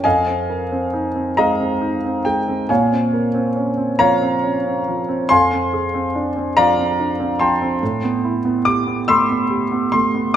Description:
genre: classical, impressionist solo piano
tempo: 47 BPM (dotted quarters)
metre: 6/8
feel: rubato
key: F minor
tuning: A4 = 445 Hz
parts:
  - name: warm concert grand piano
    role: solo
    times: 0.0-10.4 s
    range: F2 to E6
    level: -16 LUFS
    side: equal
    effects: none
room: moderate scoring stage reverb, RT60 1.5 s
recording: none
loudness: -16 LUFS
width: side -10 dB against mid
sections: 0.0-10.4 A section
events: none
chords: 0.0 Ab69/F; 2.7 Bbm9; 5.3 Fm6; 7.8 Am9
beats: | 0.04 1.38 | 2.69 4.00 | 5.31 6.57 | 7.81 9.08 | 10.36

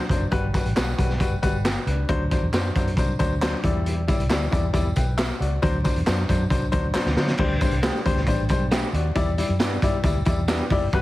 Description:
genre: uptempo 1960s-style soul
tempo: 136 BPM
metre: 4/4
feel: straight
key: unclear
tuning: A4 = 440 Hz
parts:
  - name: clear baby grand piano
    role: accompaniment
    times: 0.0-11.0 s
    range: F#3 to G5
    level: -26 LUFS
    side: left 3 dB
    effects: none
  - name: vintage muted fingered electric bass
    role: bass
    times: 0.1-11.0 s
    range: F#1 to D3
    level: -25 LUFS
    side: equal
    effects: none
  - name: raw garage drum kit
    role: drums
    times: 0.1-11.0 s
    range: crash cymbal, hi-hat, kick drum, snare drum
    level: -24 LUFS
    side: equal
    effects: none
  - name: tambourine and handclaps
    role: percussion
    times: 0.1-10.8 s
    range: none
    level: -35 LUFS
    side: right 2 dB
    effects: none
  - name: electric guitar through a small old amp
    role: stabs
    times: 7.8-10.6 s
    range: A3 to C5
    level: -30 LUFS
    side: right 2 dB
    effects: none
room: light reverb, studio ambience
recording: heavily compressed radio sound, vinyl crackle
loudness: -20 LUFS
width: side -17 dB against mid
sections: 0.0-7.4 A section; 7.4-11.0 B section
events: grand piano fill 0.0-0.3; drum fill 7.0-7.4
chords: 0.3 Gmaj7; 2.1 D7; 3.6 Em7; 5.6 D7; 7.4 D7sus4; 9.2 Em7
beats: | 0.32 0.76 1.21 1.65 | 2.09 2.53 2.98 3.42 | 3.86 4.30 4.74 5.19 | 5.63 6.07 6.51 6.95 | 7.40 7.84 8.28 8.72 | 9.16 9.60 10.04 10.48 | 10.93

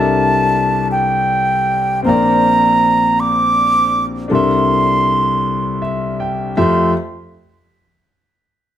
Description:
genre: slow gospel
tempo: 53 BPM (dotted quarters)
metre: 6/8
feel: straight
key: F major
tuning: A4 = 437 Hz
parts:
  - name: concert flute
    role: melody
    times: 0.0-6.9 s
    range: G5 to D6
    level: -15 LUFS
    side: right 2 dB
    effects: none
  - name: warm concert grand piano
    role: accompaniment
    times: 0.0-6.9 s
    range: Bb1 to G5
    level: -16 LUFS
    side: left 2 dB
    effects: none
room: moderate large studio reverb, RT60 1.0 s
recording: none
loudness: -12 LUFS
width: side -10 dB against mid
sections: 0.0-2.0 A section; 2.0-6.6 B section; 6.6-8.8 C section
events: grand piano fill 5.4-6.6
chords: 0.0 C13; 2.0 Bbadd9; 4.3 C13; 6.6 Fmaj9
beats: 0.92 | 2.05 3.17 | 4.30 5.43 | 6.57

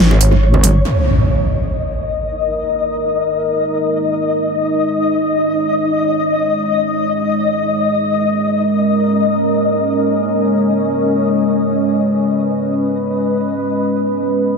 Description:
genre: deep dubstep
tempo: free time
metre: none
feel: none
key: G# minor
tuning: A4 = 440 Hz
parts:
  - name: wobble bass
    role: bass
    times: 0.0-0.8 s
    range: G#1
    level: -11 LUFS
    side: equal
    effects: chorus
  - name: flickering grainy texture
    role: texture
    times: 0.0-14.6 s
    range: C#5 to D#5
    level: -19 LUFS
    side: left 4 dB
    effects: built-in reverb
  - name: bongos and congas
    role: percussion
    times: 0.1-0.7 s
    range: none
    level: -22 LUFS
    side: right 2 dB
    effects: none
  - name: dubstep drum kit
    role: drums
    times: 0.2-0.9 s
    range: crash cymbal, hi-hat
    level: -16 LUFS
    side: equal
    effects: overdrive, low-pass filter on hats, low-pass filter on snare, low-pass filter on cymbals, low-pass filter on room, tape echo
  - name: deep dark ambient pad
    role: sustained chords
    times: 2.4-14.6 s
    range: G#3 to C#5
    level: -16 LUFS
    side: right 1 dB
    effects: chorus, built-in reverb
  - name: impact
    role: sound effects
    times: 0.9-2.6 s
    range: none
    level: -17 LUFS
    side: equal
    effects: none
room: light reverb, digital ambience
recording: echo-heavy mix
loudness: -14 LUFS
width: side -5 dB against mid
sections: 0.8-14.6 A section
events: impact 0.8-2.6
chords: 0.0 G#5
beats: free time

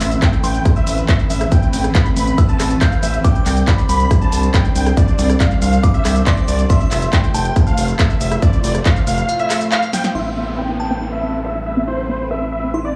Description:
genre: uplifting trance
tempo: 139 BPM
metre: 4/4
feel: straight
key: A minor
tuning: A4 = 441 Hz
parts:
  - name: big supersaw lead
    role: melody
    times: 0.0-13.0 s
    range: C5 to B5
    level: -26 LUFS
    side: equal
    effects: sidechain pumping, low-pass filter, digital delay
  - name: glassy synth bell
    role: second line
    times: 0.0-13.0 s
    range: F5 to G6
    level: -29 LUFS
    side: equal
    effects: chorus, tremolo, tape echo
  - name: gritty driven synth bass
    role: bass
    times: 0.0-13.0 s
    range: F1 to C2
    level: -21 LUFS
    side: equal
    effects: sidechain pumping
  - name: punchy analog drum machine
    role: drums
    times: 0.0-12.4 s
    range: crash cymbal, handclaps, hi-hat, rim click, shaker, snare drum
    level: -26 LUFS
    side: equal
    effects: low-pass filter on hats, small room reverb, low-pass filter on perc, low-pass filter on cymbals, low-pass filter on snare
  - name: electronic kick drum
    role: drums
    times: 0.2-8.9 s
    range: none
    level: -16 LUFS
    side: equal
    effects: small room reverb
  - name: unison pluck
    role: arpeggios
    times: 10.2-12.8 s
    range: B3 to B4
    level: -26 LUFS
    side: equal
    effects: sidechain pumping, tape echo
  - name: downlifter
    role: sound effects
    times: 10.2-13.0 s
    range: none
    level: -32 LUFS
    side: equal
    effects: none
room: little or no reverb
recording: played on a big sound system in a bare room, large studio reverb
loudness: -16 LUFS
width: mono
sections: 0.0-10.2 A section; 10.2-13.0 B section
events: drum fill 9.9; filter sweep on synth arpeggio sound 10.2-13.0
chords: 0.0 Amadd9; 3.2 Csus2; 6.7 Fmaj7; 10.2 Amadd9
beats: 0.22 0.66 1.09 | 1.52 1.95 2.38 2.81 | 3.24 3.68 4.11 4.54 | 4.97 5.40 5.83 6.27 | 6.70 7.13 7.56 7.99 | 8.42 8.86 9.29 9.72 | 10.15 10.58 11.01 11.45 | 11.88 12.31 12.74

